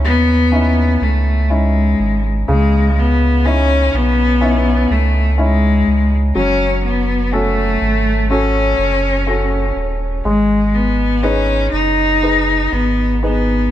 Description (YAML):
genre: pop ballad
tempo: 62 BPM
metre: 4/4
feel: straight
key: C# minor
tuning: A4 = 440 Hz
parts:
  - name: clear cello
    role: melody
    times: 0.0-13.7 s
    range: G#3 to D#4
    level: -16 LUFS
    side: left 2 dB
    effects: none
  - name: warm grand piano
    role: accompaniment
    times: 0.0-13.7 s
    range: C#3 to B4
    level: -21 LUFS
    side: left 2 dB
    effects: none
  - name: saturated sub bass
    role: bass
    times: 0.0-13.7 s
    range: D#1 to D#2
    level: -16 LUFS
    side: right 1 dB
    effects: none
room: moderate concert hall reverb, RT60 2.3 s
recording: dark, warm production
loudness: -13 LUFS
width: side -12 dB against mid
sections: 0.0-13.7 A section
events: none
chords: 0.0 C#madd9; 6.4 F#m; 10.3 G#m